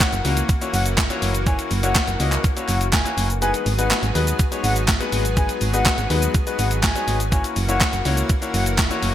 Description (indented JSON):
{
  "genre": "dance-pop",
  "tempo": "123 BPM",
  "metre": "4/4",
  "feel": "straight",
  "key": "unclear",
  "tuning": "A4 = 439 Hz",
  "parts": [
    { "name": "mellow silver concert flute", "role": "melody", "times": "0.0-8.6 s", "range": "F#5 to G#5", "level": "-28 LUFS", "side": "left 1 dB", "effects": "sidechain pumping, ping-pong delay" },
    { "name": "bright grand piano", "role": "accompaniment", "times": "0.0-9.1 s", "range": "G#3 to D#5", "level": "-26 LUFS", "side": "left 5 dB", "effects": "sidechain pumping" },
    { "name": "lush unison pad", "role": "sustained chords", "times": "0.0-9.1 s", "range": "E3 to G#4", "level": "-28 LUFS", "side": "equal", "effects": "chorus, sidechain pumping" },
    { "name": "solid FM bass", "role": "bass", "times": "0.0-9.1 s", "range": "F#1 to D#2", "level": "-22 LUFS", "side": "right 1 dB", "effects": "sidechain pumping" },
    { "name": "crisp 8-bit digital drum machine", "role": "drums", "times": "0.0-9.1 s", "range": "handclaps, hi-hat, kick drum, shaker, snare drum", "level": "-21 LUFS", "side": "equal", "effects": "gated reverb" },
    { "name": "group handclap", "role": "percussion", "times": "0.0-8.9 s", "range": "none", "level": "-29 LUFS", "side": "right 8 dB", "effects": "none" }
  ],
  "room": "light reverb",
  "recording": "bright 1980s-style digital production",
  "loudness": "-18 LUFS",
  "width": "side -12 dB against mid",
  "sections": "0.0-9.1 A section",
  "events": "kick muted 3.4-4.4",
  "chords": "0.0 F#7; 3.4 G#m7; 7.3 F#7"
}